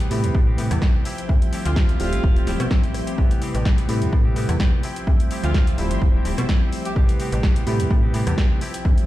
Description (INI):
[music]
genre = filtered disco house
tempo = 127 BPM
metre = 4/4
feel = swing 54% on 16ths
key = D dorian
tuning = A4 = 440 Hz
[part]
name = tine electric piano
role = accompaniment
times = 0.0-9.1 s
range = C3 to E5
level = -27 LUFS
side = equal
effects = phaser, sidechain pumping, low-pass filter
[part]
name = string machine, full ensemble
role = sustained chords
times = 0.0-9.1 s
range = F3 to G5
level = -34 LUFS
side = equal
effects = ensemble chorus, sidechain pumping, low-pass filter
[part]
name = direct-recorded clean electric guitar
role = riff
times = 0.0-9.1 s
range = E3 to G4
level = -34 LUFS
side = left 2 dB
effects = sidechain pumping, low-pass filter
[part]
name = slap-like FM bass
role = bass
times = 0.0-8.9 s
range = D1 to B2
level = -23 LUFS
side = equal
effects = sidechain pumping, low-pass filter
[part]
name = punchy analog drum machine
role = drums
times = 0.0-9.1 s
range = hi-hat, rim click, snare drum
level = -30 LUFS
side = equal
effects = sidechain pumping on hats
[part]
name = electronic kick drum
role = drums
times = 0.3-9.0 s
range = none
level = -18 LUFS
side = equal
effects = none
[part]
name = bright horn section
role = melody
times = 1.7-7.0 s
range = F4 to G4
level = -32 LUFS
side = right 1 dB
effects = sidechain pumping, low-pass filter, digital delay
[sound]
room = little or no reverb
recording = played on a big sound system in a bare room, large studio reverb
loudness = -18 LUFS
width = side -15 dB against mid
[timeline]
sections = 0.0-9.1 A section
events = none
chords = 0.0 Am9; 1.1 Dm11; 3.2 Am9; 4.8 Dm11; 7.0 Am9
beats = 0.35 0.82 | 1.29 1.76 2.24 2.71 | 3.18 3.65 4.13 4.60 | 5.07 5.54 6.02 6.49 | 6.96 7.43 7.91 8.38 | 8.85